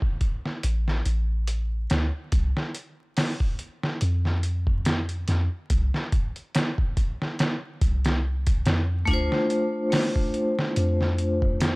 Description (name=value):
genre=trip hop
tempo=71 BPM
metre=4/4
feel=swing 56% on 16ths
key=unclear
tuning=A4 = 441 Hz
part: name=trip hop sampler-style drum kit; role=drums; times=0.0-11.8 s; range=hi-hat, kick drum, snare drum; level=-25 LUFS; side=equal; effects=studio reverb
part: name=soft 808-style bass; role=bass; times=0.6-11.8 s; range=A1 to F2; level=-24 LUFS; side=equal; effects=none
part: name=vibraphone with hard mallets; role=accompaniment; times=9.1-11.8 s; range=A3 to C5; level=-24 LUFS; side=left 1 dB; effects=tremolo, vintage 12-bit sampler grit, tape echo
room=little or no reverb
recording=dry, gritty hardware recording, vinyl crackle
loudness=-23 LUFS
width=side -25 dB against mid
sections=0.0-11.8 A section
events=none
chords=0.0 N.C.; 2.3 Csus4; 9.1 Dm7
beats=0.63 1.48 | 2.32 3.17 4.01 4.86 | 5.70 6.55 7.39 8.24 | 9.08 9.93 10.77 11.62